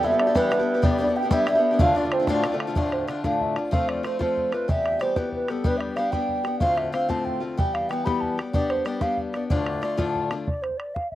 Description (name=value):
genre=celtic folk, Celtic jig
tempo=124 BPM (dotted quarters)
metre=6/8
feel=straight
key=D dorian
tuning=A4 = 439 Hz
part: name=mellow hollow baroque flute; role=melody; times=0.0-11.2 s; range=A4 to B5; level=-26 LUFS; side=right 1 dB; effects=none
part: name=hammered dulcimer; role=second line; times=0.0-6.1 s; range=B3 to A4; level=-27 LUFS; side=right 3 dB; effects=slapback echo
part: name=picked acoustic archtop guitar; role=accompaniment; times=0.0-10.5 s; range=D2 to G4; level=-26 LUFS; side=left 4 dB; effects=slapback echo
part: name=bodhran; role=percussion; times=0.0-11.2 s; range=none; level=-27 LUFS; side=equal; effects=none
room=little or no reverb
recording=recorded outdoors, with no room sound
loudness=-21 LUFS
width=side -14 dB against mid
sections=0.0-2.8 A section; 2.8-10.5 B section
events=none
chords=0.0 Em; 0.8 G; 1.8 Dm; 3.7 F; 4.7 Em; 5.6 G; 6.6 Dm7; 7.6 Em; 8.5 G; 9.5 Dm; 10.5 N.C.